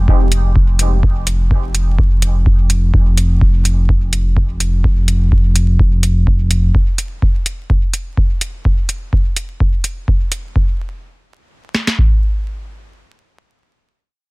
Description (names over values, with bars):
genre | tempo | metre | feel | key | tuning
dub techno | 126 BPM | 4/4 | swing 54% on 16ths | unclear | A4 = 440 Hz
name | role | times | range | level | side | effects
round analog bass | bass | 0.0-6.7 s | F1 | -14 LUFS | equal | sidechain pumping
booming analog drum machine | drums | 0.1-12.1 s | kick drum, snare drum | -14 LUFS | equal | none
electronic hi-hat | drums | 0.3-10.4 s | none | -20 LUFS | right 1 dB | overdrive
room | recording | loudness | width
little or no reverb | dense, heavily limited modern master, vinyl crackle | -12 LUFS | side -25 dB against mid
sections
0.0-10.6 A section; 10.6-14.3 B section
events
none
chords
none